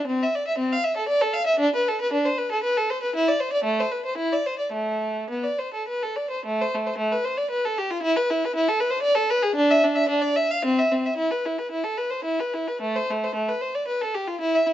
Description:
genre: classical, baroque-style suite movement for unaccompanied violin.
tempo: 102-122 BPM.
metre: 3/4.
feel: rubato.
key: A minor.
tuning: A4 = 436 Hz.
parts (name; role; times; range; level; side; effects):
warm violin; solo; 0.0-14.7 s; A3 to F5; -21 LUFS; equal; none.
room: light reverb.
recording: nothing above 7.8 kHz.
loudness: -22 LUFS.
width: side -12 dB against mid.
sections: 0.0-6.4 A section; 6.4-14.7 B section.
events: none.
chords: none.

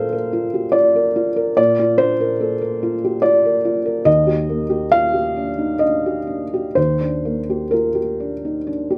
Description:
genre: neoclassical minimalist piano.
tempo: 62-74 BPM.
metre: 3/4.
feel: rubato.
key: unclear.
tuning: A4 = 435 Hz.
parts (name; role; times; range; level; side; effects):
felt-muted upright piano; solo; 0.0-9.0 s; Eb2 to F5; -18 LUFS; equal; none.
room: light reverb.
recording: none.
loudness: -18 LUFS.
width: mono.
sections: 0.0-9.0 A section.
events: none.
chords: 0.0 Bbadd9; 4.1 Ebmaj7.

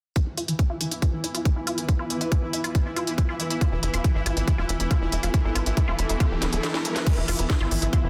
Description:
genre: psychedelic trance.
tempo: 139 BPM.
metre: 4/4.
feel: straight.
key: unclear.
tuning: A4 = 440 Hz.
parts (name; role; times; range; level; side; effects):
pulsing gated texture; sustained chords; 0.4-8.1 s; E3 to E4; -36 LUFS; equal; chorus, built-in reverb, sidechain pumping.
unison pluck; riff; 0.2-8.1 s; D3 to F4; -34 LUFS; equal; phaser, sidechain pumping, tape echo.
electronic kick drum; drums; 0.2-8.0 s; none; -26 LUFS; equal; none.
garage drum kit; drums; 0.2-8.0 s; crash cymbal, hi-hat, snare drum; -32 LUFS; equal; none.
granular cloud pad; texture; 0.9-8.1 s; B3 to E5; -36 LUFS; equal; built-in reverb, sidechain pumping.
riser; sound effects; 5.4-7.1 s; none; -40 LUFS; equal; none.
tight sequencer bass; bass; 3.7-8.1 s; D1 to G#1; -28 LUFS; equal; none.
room: light reverb.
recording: dense, heavily limited modern master.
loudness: -25 LUFS.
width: mono.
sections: 0.2-7.1 A section; 7.1-8.1 B section.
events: filter sweep on synth arpeggio sound 0.2-7.1; drum fill 6.4-7.1; kick drops out 6.6-7.1.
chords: 0.2 E5.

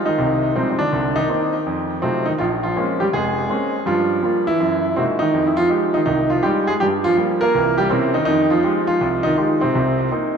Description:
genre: solo jazz.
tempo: 163 BPM.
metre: 4/4.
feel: swing 65% on 8ths.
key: F minor.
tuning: A4 = 440 Hz.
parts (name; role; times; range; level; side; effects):
clear grand piano; solo; 0.0-10.4 s; F1 to Bb4; -16 LUFS; right 1 dB; ping-pong delay.
room: wet plate reverb, RT60 3.5 s.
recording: dreamy mix soaked in reverb.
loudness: -16 LUFS.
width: side -6 dB against mid.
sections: 0.0-10.4 A section.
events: none.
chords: 0.0 Fm9; 0.9 Cm9; 1.7 F7b9; 2.4 Bbm9; 3.9 Gm7; 4.6 Gb13; 5.3 Fm9; 6.8 Gm7; 7.5 C7b9; 8.3 Fm9; 9.7 Cm7.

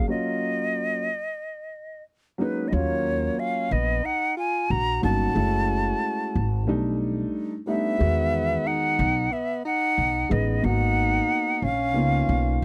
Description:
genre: hip hop.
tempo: 91 BPM.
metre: 4/4.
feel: swing 65% on 16ths.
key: Eb minor.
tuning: A4 = 440 Hz.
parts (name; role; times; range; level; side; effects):
jazz flute; melody; 0.0-12.6 s; Cb5 to Bb5; -28 LUFS; equal; none.
dark grand piano; accompaniment; 0.0-12.6 s; D#3 to G#4; -30 LUFS; equal; none.
breathy tenor saxophone; second line; 2.4-12.6 s; Ab3 to Gb4; -34 LUFS; equal; none.
upright bass; bass; 2.7-12.6 s; Gb1 to E2; -28 LUFS; equal; none.
room: little or no reverb.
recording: dry, close 1970s-style studio recording.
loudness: -24 LUFS.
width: mono.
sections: 0.0-2.7 A section; 2.7-12.6 B section.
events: break 0.1-2.7.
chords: 0.0 Ebm7; 5.4 Gbm9; 6.7 B7alt; 8.0 Emaj9; 10.6 Abm9; 12.0 Db13.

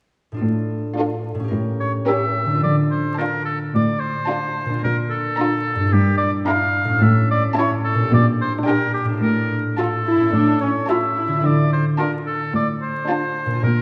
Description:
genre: cinematic, playful, whimsical film cue.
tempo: 109 BPM.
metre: 4/4.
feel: straight.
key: D minor.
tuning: A4 = 445 Hz.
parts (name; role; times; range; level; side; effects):
concert harp; arpeggios; 0.3-13.8 s; G2 to Bb4; -26 LUFS; equal; none.
warm studio cello section; bass; 0.4-13.8 s; G2 to D3; -23 LUFS; equal; none.
warm studio violin section; melody; 1.0-13.5 s; A4 to Bb5; -32 LUFS; equal; none.
rich studio violin section; second line; 1.0-13.5 s; E4 to G4; -30 LUFS; equal; none.
warm studio viola section; accompaniment; 1.0-13.5 s; C#4 to F4; -26 LUFS; equal; none.
clear oboe; second line; 1.8-13.8 s; G4 to F5; -25 LUFS; equal; none.
room: wet concert hall reverb, RT60 2.1 s.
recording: dark, warm production, vinyl crackle.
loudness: -20 LUFS.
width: mono.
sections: 0.4-2.6 A section; 2.6-13.8 B section.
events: none.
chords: 0.4 Dm/A; 2.6 Dm; 4.8 Bbmaj7; 5.9 Em7b5/G; 7.0 A; 8.1 Gm/Bb; 9.2 Dm/A; 11.4 Dm.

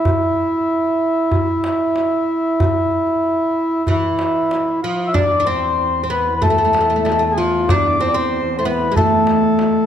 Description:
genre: Arabic maqam ensemble.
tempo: 94 BPM.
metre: 4/4.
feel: straight.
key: E maqam hijaz from 5.1 s.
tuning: A4 = 438 Hz.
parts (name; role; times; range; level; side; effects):
mellow accordion; melody; 0.0-9.9 s; E4 to E5; -16 LUFS; left 1 dB; none.
oud; second line; 0.0-9.9 s; E3 to D4; -20 LUFS; right 2 dB; none.
darbuka; percussion; 0.1-9.7 s; none; -22 LUFS; equal; none.
muted chamber cello section; drone; 5.1-9.9 s; E2; -26 LUFS; right 1 dB; none.
room: moderate concert hall reverb, RT60 2.2 s.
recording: none.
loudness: -15 LUFS.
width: side -9 dB against mid.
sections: 0.0-5.1 A section; 5.1-9.9 B section.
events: none.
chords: none.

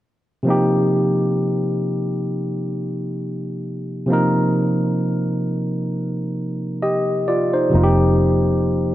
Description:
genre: R&B, neo-soul.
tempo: 66 BPM.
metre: 4/4.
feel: swing 58% on 16ths.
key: C minor.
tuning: A4 = 442 Hz.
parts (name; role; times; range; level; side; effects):
barky tine electric piano; accompaniment; 0.4-8.9 s; C3 to Eb5; -18 LUFS; equal; none.
vintage muted fingered electric bass; bass; 7.7-8.9 s; F1; -20 LUFS; equal; none.
room: moderate plate reverb, RT60 3.7 s.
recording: none.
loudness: -18 LUFS.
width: side -14 dB against mid.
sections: 0.5-8.9 A section.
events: none.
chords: 0.5 Cm7; 7.7 Fsus2.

